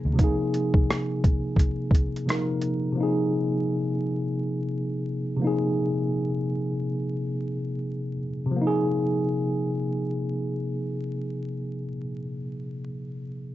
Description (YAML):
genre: lo-fi hip hop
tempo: 86 BPM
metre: 4/4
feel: swing 58% on 16ths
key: unclear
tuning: A4 = 442 Hz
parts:
  - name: mellow tine electric piano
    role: accompaniment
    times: 0.0-13.5 s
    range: C3 to Bb4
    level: -25 LUFS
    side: equal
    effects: overdrive, slow stereo tremolo, cassette tape, low-pass filter
  - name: boom bap sampler-style drum kit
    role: drums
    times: 0.2-2.8 s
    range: hi-hat, kick drum, rim click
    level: -21 LUFS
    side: equal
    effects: none
room: moderate small room reverb, RT60 0.5 s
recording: dark, warm production, vinyl crackle, nothing above 7.8 kHz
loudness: -24 LUFS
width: side -14 dB against mid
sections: 0.0-8.6 A section; 8.6-11.3 B section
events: none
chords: 0.2 Ab69/C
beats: | 0.19 0.88 1.58 2.28 | 2.98 3.67 4.37 5.07 | 5.77 6.46 7.16 7.86 | 8.56 9.26 9.95 10.65